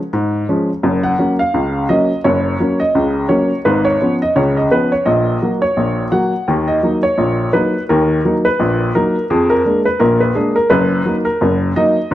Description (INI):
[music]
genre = ragtime piano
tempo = 85 BPM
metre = 2/4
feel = swing 57% on 16ths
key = F# major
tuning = A4 = 442 Hz
[part]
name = clear upright piano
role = solo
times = 0.0-12.1 s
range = F#1 to F#5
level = -13 LUFS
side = equal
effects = none
[sound]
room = light reverb, studio reverb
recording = dry, close 1970s-style studio recording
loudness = -13 LUFS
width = side -13 dB against mid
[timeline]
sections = 0.8-12.1 A section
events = none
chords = 0.0 C#; 0.8 F#; 3.7 C#7/G#; 5.1 F#/A#; 6.5 D#m; 9.3 A#7/E#; 10.7 D#m/F#